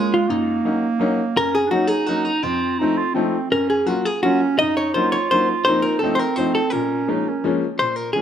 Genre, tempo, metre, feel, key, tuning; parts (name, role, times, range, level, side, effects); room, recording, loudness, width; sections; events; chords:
musette waltz; 168 BPM; 3/4; straight; Bb minor; A4 = 440 Hz
hollow-body jazz guitar; melody; 0.0-8.2 s; C4 to Eb5; -20 LUFS; left 2 dB
clear clarinet; second line; 0.0-7.6 s; Ab3 to F4; -22 LUFS; right 5 dB
bright upright piano; accompaniment; 0.0-8.2 s; F2 to F4; -23 LUFS; left 4 dB
moderate recital hall reverb, RT60 1.4 s; close, detailed microphones; -17 LUFS; side -9 dB against mid
0.0-7.8 A section
0.3 Gb6; 2.4 F7; 3.5 Gbmaj7; 4.6 Ebm7/Gb; 5.7 F7sus4; 6.0 F7; 6.7 Bbm7